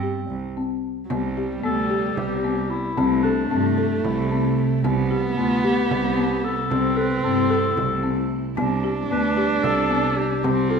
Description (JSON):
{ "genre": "contemporary instrumental, chamber music in an uneven meter", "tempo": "225 BPM (eighths)", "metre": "7/8", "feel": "straight", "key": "unclear", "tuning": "A4 = 440 Hz", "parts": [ { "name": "clear clarinet", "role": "melody", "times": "0.0-10.8 s", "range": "C4 to B4", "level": "-26 LUFS", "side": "left 4 dB", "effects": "none" }, { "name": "folk marimba with medium mallets", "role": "arpeggios", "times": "0.0-10.8 s", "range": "B3 to A4", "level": "-25 LUFS", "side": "left 6 dB", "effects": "none" }, { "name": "rich cello", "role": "bass", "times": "0.0-10.8 s", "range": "C2 to G2", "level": "-26 LUFS", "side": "right 5 dB", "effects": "none" }, { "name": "dark viola", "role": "second line", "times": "1.0-10.8 s", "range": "F#3 to D4", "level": "-26 LUFS", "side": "right 3 dB", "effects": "none" }, { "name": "evolving wavetable pad", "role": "sustained chords", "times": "1.7-10.8 s", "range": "C3 to E5", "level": "-29 LUFS", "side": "right 4 dB", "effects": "ensemble chorus, built-in reverb, phaser" }, { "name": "frame drum", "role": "percussion", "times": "1.1-10.7 s", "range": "none", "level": "-33 LUFS", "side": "right 3 dB", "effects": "none" } ], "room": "wet recital hall reverb, RT60 1.4 s", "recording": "minimal, uncompressed stereo recording", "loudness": "-20 LUFS", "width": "side -6 dB against mid", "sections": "0.0-1.1 A section; 1.1-10.8 B section", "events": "none", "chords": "0.0 C5; 1.1 G/C; 3.0 C6; 4.8 G/C; 6.7 C6; 8.6 G/C" }